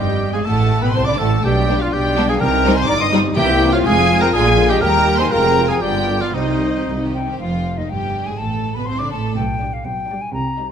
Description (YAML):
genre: quick classical-period movement for symphony orchestra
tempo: 123 BPM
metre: 2/4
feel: rubato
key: C minor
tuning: A4 = 440 Hz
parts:
  - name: rich studio violin section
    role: melody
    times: 0.0-10.7 s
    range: Eb4 to Eb6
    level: -23 LUFS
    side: left 2 dB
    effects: none
  - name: bright clarinet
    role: second line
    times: 0.0-7.1 s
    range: Eb4 to Eb5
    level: -26 LUFS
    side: left 3 dB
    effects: none
  - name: clear studio violin section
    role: second line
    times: 0.0-10.7 s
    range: G3 to D5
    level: -27 LUFS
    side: left 2 dB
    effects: none
  - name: silver concert flute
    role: second line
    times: 0.0-10.7 s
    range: C5 to D6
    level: -24 LUFS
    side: left 2 dB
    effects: none
  - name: warm cor anglais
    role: second line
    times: 0.0-7.1 s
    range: Eb4 to Eb5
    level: -24 LUFS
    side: right 3 dB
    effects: none
  - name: rich symphonic viola section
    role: accompaniment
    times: 0.0-10.7 s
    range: D3 to D4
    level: -26 LUFS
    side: equal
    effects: none
  - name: dark French horn section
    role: sustained chords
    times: 0.0-7.1 s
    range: G3 to Ab4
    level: -23 LUFS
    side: left 4 dB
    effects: none
  - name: dark trumpet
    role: stabs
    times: 0.0-7.1 s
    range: Eb4 to Eb5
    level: -22 LUFS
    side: right 1 dB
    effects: none
  - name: rich studio cello section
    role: bass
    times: 0.0-10.7 s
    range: Eb2 to D3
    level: -24 LUFS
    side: right 4 dB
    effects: none
  - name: rich studio double bass section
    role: bass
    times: 0.0-10.7 s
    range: F1 to Eb2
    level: -22 LUFS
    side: right 2 dB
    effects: none
  - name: timpani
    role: percussion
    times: 0.0-0.2, 2.4-3.8 s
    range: C3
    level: -28 LUFS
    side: equal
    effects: none
room: moderate scoring stage reverb, RT60 1.7 s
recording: none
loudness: -15 LUFS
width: side -8 dB against mid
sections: 0.0-7.4 A section; 7.4-10.7 A section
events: none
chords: 0.5 D5/A; 1.4 G/B; 2.4 Cm; 3.4 C7; 3.8 Fm; 4.3 Bb7; 4.8 Eb; 5.3 Fm; 5.8 G7; 6.3 Cm; 7.4 Fm9; 8.4 D5/A; 9.4 G/B